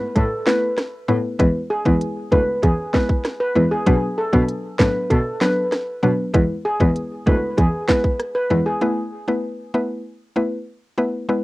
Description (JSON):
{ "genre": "dancehall", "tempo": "97 BPM", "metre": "4/4", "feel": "straight", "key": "unclear", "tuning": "A4 = 441 Hz", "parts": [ { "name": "mallet-like synth pluck", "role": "accompaniment", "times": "0.0-11.4 s", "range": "F#3 to B4", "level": "-21 LUFS", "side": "left 1 dB", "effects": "chorus, cassette tape" }, { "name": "steel pan", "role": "melody", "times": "0.2-8.8 s", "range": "G#4 to B4", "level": "-23 LUFS", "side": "equal", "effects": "cassette tape, analog delay" }, { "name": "dark cello", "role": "bass", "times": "0.2-8.6 s", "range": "D2 to B2", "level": "-20 LUFS", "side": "equal", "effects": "none" }, { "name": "island pop drum kit", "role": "drums", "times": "0.2-8.3 s", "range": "handclaps, hi-hat, kick drum, rim click, snare drum", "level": "-20 LUFS", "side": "equal", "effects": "cassette tape" } ], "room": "light reverb", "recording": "home recording on cassette", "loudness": "-18 LUFS", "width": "side -20 dB against mid", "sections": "0.0-8.8 A section; 8.8-11.4 B section", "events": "none", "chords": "0.0 Asus2; 1.4 E; 3.9 Bm; 6.3 E; 8.8 Asus2" }